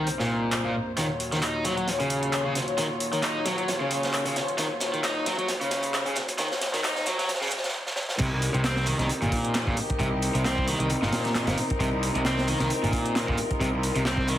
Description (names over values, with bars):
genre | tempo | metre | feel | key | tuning
breakbeat, breaks | 133 BPM | 4/4 | swing 55% on 16ths | C phrygian | A4 = 440 Hz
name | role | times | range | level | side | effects
dark studio string section | sustained chords | 0.0-14.4 s | C2 to Db5 | -31 LUFS | left 2 dB | sidechain pumping
crunchy overdriven guitar | riff | 0.0-14.4 s | Bb2 to Eb4 | -28 LUFS | equal | tube saturation, vintage 12-bit sampler grit, low-pass filter, dub echo
crunchy breakbeat drum kit | drums | 0.1-14.4 s | crash cymbal, hi-hat, kick drum, snare drum | -30 LUFS | equal | high-pass filter on kick, high-pass filter on hats, high-pass filter on cymbals, high-pass filter on snare, high-pass filter on room
punchy analog drum machine | drums | 0.5-14.4 s | handclaps, hi-hat | -32 LUFS | right 1 dB | none
fuzz picked electric bass | bass | 8.2-14.3 s | G1 to C2 | -28 LUFS | equal | overdrive, tube saturation
room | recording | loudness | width
wet studio reverb, RT60 0.6 s | heavily compressed radio sound, multiband compression, high-pass filter | -24 LUFS | side -12 dB against mid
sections
0.0-8.2 A section; 8.2-14.4 B section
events
build-up 0.0-8.2; filter sweep on overdriven electric guitar 0.0-8.2; filter sweep 0.0-8.2; drum fill 1.0-7.7, 7.9-8.2; stop 7.7-8.2; drop 8.2-14.4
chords
0.0 Cm7; 1.0 Ebm7; 8.2 Cm7